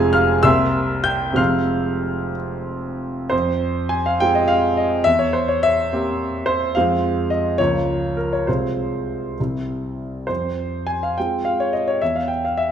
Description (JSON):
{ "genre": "classical, romantic character piece for solo piano", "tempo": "60-74 BPM (dotted quarters)", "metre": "6/8", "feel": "rubato", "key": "F minor", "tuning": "A4 = 440 Hz", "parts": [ { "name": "warm concert grand piano", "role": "solo", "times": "0.0-12.7 s", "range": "F1 to G6", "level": "-18 LUFS", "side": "equal", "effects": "none" } ], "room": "wet recital hall reverb, RT60 1.6 s", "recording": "none", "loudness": "-18 LUFS", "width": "side -8 dB against mid", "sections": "0.0-3.3 A section; 3.3-12.7 B section", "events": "none", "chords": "0.4 C7; 1.4 Fm; 5.1 C7/E; 6.7 Fm; 7.6 Bbm/Db; 8.5 Fm/C; 9.4 C; 10.3 Fm; 12.0 C/E (rootless)" }